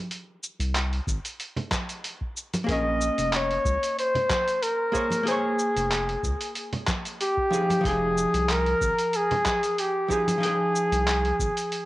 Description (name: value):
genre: sunset chillout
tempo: 93 BPM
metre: 4/4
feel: swing 54% on 16ths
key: Bb minor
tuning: A4 = 437 Hz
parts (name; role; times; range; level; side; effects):
- dusty soul sampler-style drum kit; drums; 0.1-11.9 s; handclaps, hi-hat, shaker; -31 LUFS; equal; overdrive, small room ambience, cassette tape
- round analog bass; bass; 0.6-11.5 s; F1 to Db2; -29 LUFS; equal; tube saturation
- electronic kick drum; drums; 1.1-11.5 s; none; -32 LUFS; equal; small room ambience, cassette tape
- congas; percussion; 1.6-10.4 s; none; -32 LUFS; right 1 dB; none
- archtop guitar, miked and amplified; accompaniment; 2.6-11.9 s; F3 to G5; -30 LUFS; equal; auto-pan, cassette tape
- trumpet with bucket mute; melody; 2.7-11.9 s; G4 to Eb5; -24 LUFS; equal; cassette tape, tape echo
room: wet spring reverb, RT60 2.1 s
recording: home recording on cassette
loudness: -23 LUFS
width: side -17 dB against mid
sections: 0.0-11.9 A section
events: none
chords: 0.0 Fm (rootless); 2.7 Bbm9; 7.5 Fm9